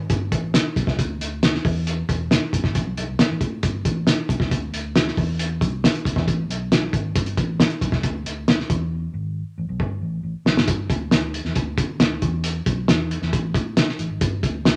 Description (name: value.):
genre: uptempo 1960s-style soul.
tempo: 136 BPM.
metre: 4/4.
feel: straight.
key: G major.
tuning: A4 = 440 Hz.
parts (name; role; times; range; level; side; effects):
vintage muted fingered electric bass; bass; 0.0-14.8 s; E1 to D3; -29 LUFS; equal; none.
cloth-damped thuddy drum kit; drums; 0.1-14.8 s; hi-hat, kick drum, snare drum; -22 LUFS; equal; none.
room: moderate studio reverb, RT60 0.7 s.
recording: none.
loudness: -22 LUFS.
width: mono.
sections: 0.0-10.7 A section; 10.7-14.8 B section.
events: drum fill 8.9-10.7.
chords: none.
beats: | 0.10 0.54 0.98 1.43 | 1.87 2.31 2.75 3.19 | 3.63 4.07 4.51 4.95 | 5.39 5.83 6.28 6.71 | 7.16 7.60 8.04 8.48 | 8.92 9.36 9.80 10.24 | 10.68 11.12 11.56 12.00 | 12.44 12.88 13.33 13.77 | 14.21 14.65.